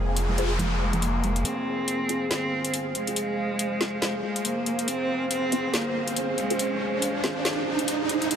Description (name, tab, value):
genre	deep dubstep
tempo	140 BPM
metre	4/4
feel	swing 58% on 16ths, half-time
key	F minor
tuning	A4 = 440 Hz
part	bowed-like drone	sustained chords	0.0-8.4 s	F3 to F5	-30 LUFS	equal	built-in reverb
part	soft dub sub bass	bass	0.0-8.4 s	F1 to Ab1	-33 LUFS	equal	high-pass filter
part	noise sweep and riser	sound effects	0.0-8.4 s	none	-31 LUFS	right 3 dB	none
part	garage drum kit	drums	0.2-8.4 s	hi-hat, snare drum	-29 LUFS	left 1 dB	none
part	congas	percussion	0.3-1.3 s	none	-33 LUFS	right 3 dB	dub echo
part	filtered dub chord stab	stabs	0.4-7.4 s	C4 to Ab4	-35 LUFS	left 1 dB	phaser, ensemble chorus, dub echo
part	rich cello	melody	0.8-7.6 s	Ab3 to C4	-29 LUFS	right 1 dB	low-pass filter, dub echo
room	moderate huge ambient reverb, RT60 5.2 s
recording	none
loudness	-24 LUFS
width	side -8 dB against mid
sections	0.0-1.5 A section; 1.5-8.4 B section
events	noise sweep 0.0-1.5; build-up 1.5-8.4; riser 1.5-8.4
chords	0.0 Fm